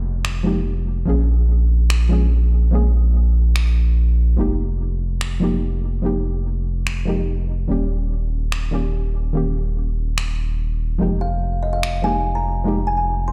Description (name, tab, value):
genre	future bass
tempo	145 BPM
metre	4/4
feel	half-time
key	F minor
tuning	A4 = 440 Hz
part	soft round pluck	accompaniment	0.0-13.3 s	Eb3 to Ab4	-27 LUFS	equal	chorus, cassette tape, digital delay
part	saturated sub bass	bass	0.0-13.3 s	Eb1 to Bb1	-21 LUFS	equal	none
part	downlifter	sound effects	0.0-1.1 s	none	-47 LUFS	equal	none
part	electronic finger snaps	drums	0.2-11.9 s	none	-29 LUFS	equal	none
part	kalimba	melody	11.2-13.3 s	Eb5 to C6	-26 LUFS	equal	dub echo
room	little or no reverb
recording	played on a big sound system in a bare room, large studio reverb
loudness	-20 LUFS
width	mono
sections	0.0-13.3 A section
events	none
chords	0.0 Fm11; 1.1 Bbm7; 4.4 Fm11; 7.7 Eb7; 11.0 Fm11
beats	0.25 0.66 | 1.07 1.49 1.90 2.32 | 2.73 3.14 3.56 3.97 | 4.38 4.80 5.21 5.63 | 6.04 6.45 6.87 7.28 | 7.70 8.11 8.52 8.94 | 9.35 9.76 10.18 10.59 | 11.01 11.42 11.83 12.25 | 12.66 13.07